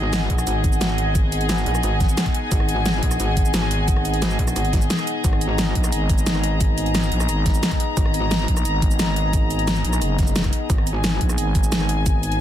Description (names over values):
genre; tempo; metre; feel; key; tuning
dark technical drum and bass; 176 BPM; 4/4; straight; G# minor; A4 = 442 Hz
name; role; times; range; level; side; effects
dark analog pad; sustained chords; 0.0-12.4 s; B3 to G#5; -28 LUFS; equal; wide subtle chorus, sidechain pumping
metallic wobble bass; bass; 0.0-5.7, 8.0-8.5, 10.7-11.2 s; G#1 to A#1; -23 LUFS; equal; chorus, tube saturation
warm studio string section; texture; 0.0-12.4 s; G#4 to A#5; -27 LUFS; left 3 dB; sidechain pumping
dubstep drum kit; drums; 0.1-12.4 s; cabasa, hi-hat, rim click, snare drum; -25 LUFS; equal; overdrive
electronic kick drum; drums; 0.3-12.1 s; none; -20 LUFS; equal; overdrive
growling FM bass; bass; 5.8-12.4 s; F#1 to A#1; -22 LUFS; equal; none
room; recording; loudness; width
little or no reverb; dense, heavily limited modern master; -18 LUFS; side -11 dB against mid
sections
0.0-12.4 A section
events
break 4.9-5.2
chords
0.0 G#m